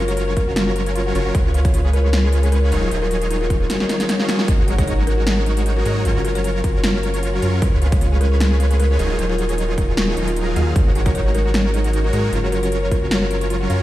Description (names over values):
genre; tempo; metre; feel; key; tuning
future bass; 153 BPM; 4/4; swing 54% on 16ths, half-time; F# major; A4 = 440 Hz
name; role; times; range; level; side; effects
kalimba; melody; 0.0-13.5 s; A#4 to F#5; -26 LUFS; left 3 dB; sidechain pumping, ping-pong delay
ethereal airy pad; sustained chords; 0.0-13.8 s; C#3 to A#4; -32 LUFS; left 1 dB; none
soft round pluck; arpeggios; 0.0-13.8 s; D#4 to C#5; -29 LUFS; equal; chorus, cassette tape, sidechain pumping, tape echo
supersaw chords; riff; 0.0-13.8 s; F#3 to E#5; -25 LUFS; right 1 dB; sidechain pumping
saturated sub bass; bass; 0.0-13.8 s; D#1 to G#2; -19 LUFS; equal; sidechain pumping
big-room dance drum kit; drums; 0.1-13.8 s; hi-hat, snare drum; -23 LUFS; equal; overdrive, small room ambience
electronic kick drum; drums; 0.4-13.0 s; none; -19 LUFS; equal; overdrive, small room ambience
room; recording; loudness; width
little or no reverb; played on a big sound system in a bare room, stone room reverb; -16 LUFS; side -15 dB against mid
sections
0.0-13.8 A section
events
drum fill 3.7-4.5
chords
0.0 F#maj7; 1.3 C#7; 2.7 D#m11; 4.5 G#9sus4; 6.1 F#maj7; 7.6 C#7; 9.0 D#m11; 10.8 G#9sus4; 12.3 F#maj7